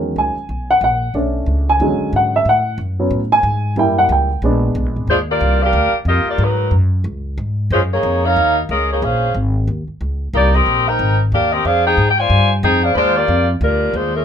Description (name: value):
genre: jazz, big band swing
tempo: 183 BPM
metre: 4/4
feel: swing 62% on 8ths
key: Eb major from 5.1 s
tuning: A4 = 440 Hz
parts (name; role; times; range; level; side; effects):
- dark baby grand piano; accompaniment; 0.0-5.1 s; D3 to G#5; -15 LUFS; right 1 dB; none
- upright bass; bass; 0.0-14.2 s; G#1 to A2; -18 LUFS; equal; none
- dark saxophone section; melody; 5.1-14.2 s; Gb3 to Ab5; -15 LUFS; left 1 dB; none
room: moderate club reverb, RT60 0.7 s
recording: minimal, uncompressed stereo recording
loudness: -14 LUFS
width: side -8 dB against mid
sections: 0.0-5.1 A section; 5.1-14.2 B section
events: grand piano solo 0.0-5.1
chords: 0.0 Emaj13; 1.1 Bm9; 1.8 E13; 2.5 A6; 3.8 F#7b9; 4.4 A#7b9; 5.1 Ebmaj9; 6.4 Abm9; 7.0 Db5; 7.7 Gb69; 9.0 Bbm9; 9.7 Dbsus2; 10.3 Abmaj9; 11.6 Fm13; 13.0 Ebmaj9